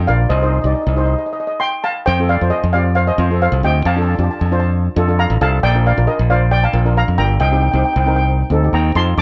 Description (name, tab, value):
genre	calypso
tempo	135 BPM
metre	4/4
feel	swing 53% on 16ths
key	unclear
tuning	A4 = 443 Hz
part	steel pan	melody	0.0-9.2 s	Bb4 to D6	-21 LUFS	equal	delay
part	modern bright fingered electric bass	bass	0.0-9.2 s	G1 to F2	-17 LUFS	equal	none
part	steel pan	accompaniment	0.1-9.2 s	C4 to D5	-24 LUFS	equal	none
room	light reverb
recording	worn, warbling old tape, cassette tape, warbly pitch drift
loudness	-16 LUFS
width	mono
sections	0.0-2.1 A section; 2.1-9.2 A section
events	stop 1.2-2.1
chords	0.3 Cm; 2.1 F; 3.9 Dm/F; 5.6 Bb; 7.4 Cm